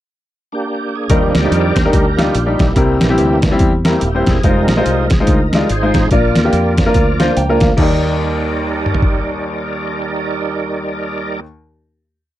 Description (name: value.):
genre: uptempo gospel.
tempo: 144 BPM.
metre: 4/4.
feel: swing 60% on 8ths.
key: Eb major.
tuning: A4 = 439 Hz.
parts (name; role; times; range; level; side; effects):
overdriven tonewheel organ; sustained chords; 0.5-11.4 s; E3 to D5; -20 LUFS; right 3 dB; slow rotary speaker, chorus vibrato.
bright baby grand piano; accompaniment; 1.1-11.4 s; Eb2 to G5; -17 LUFS; left 2 dB; none.
fingered electric bass; bass; 1.1-11.4 s; Eb1 to F2; -18 LUFS; equal; none.
boom bap sampler-style drum kit; drums; 1.1-9.1 s; crash cymbal, hi-hat, kick drum, snare drum, toms; -16 LUFS; equal; overdrive.
room: little or no reverb.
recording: dry, close 1970s-style studio recording.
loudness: -12 LUFS.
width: side -14 dB against mid.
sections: 0.0-1.1 pickup bar; 1.1-7.8 breakdown; 7.8-11.1 final chord.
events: tonewheel organ solo 1.1-7.8; grand piano fill 7.2-7.8.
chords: 0.0 Bb6; 1.1 Ebmaj7; 2.8 C7; 4.4 Fm7; 6.1 Bb; 7.8 Ebmaj7.